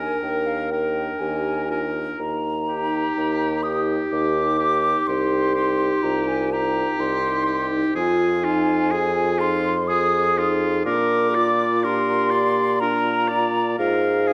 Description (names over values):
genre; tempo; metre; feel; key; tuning
classical, slow romantic movement for wind quintet; 62 BPM; 3/4; rubato; unclear; A4 = 440 Hz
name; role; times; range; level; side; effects
mellow silver concert flute; melody; 0.0-14.3 s; F5 to Eb6; -27 LUFS; equal; none
bright oboe; second line; 0.0-14.3 s; F4 to D5; -30 LUFS; equal; none
dark French horn; accompaniment; 0.0-14.3 s; Eb4 to Bb4; -29 LUFS; equal; none
dark clarinet; accompaniment; 0.0-14.3 s; D4 to F4; -31 LUFS; equal; none
warm bassoon; bass; 0.0-14.3 s; C2 to Bb2; -28 LUFS; equal; none
room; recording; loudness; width
wet recital hall reverb, RT60 1.6 s; none; -21 LUFS; mono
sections
0.0-14.3 A section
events
none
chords
0.0 Bb7/Eb; 2.2 Eb; 5.1 Cm; 8.0 Fm7; 10.9 Bb; 13.8 Bb7(no3)/Ab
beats
0.23 1.21 | 2.19 3.16 4.11 | 5.07 6.03 6.99 | 7.95 8.92 9.89 | 10.86 11.84 12.81 | 13.79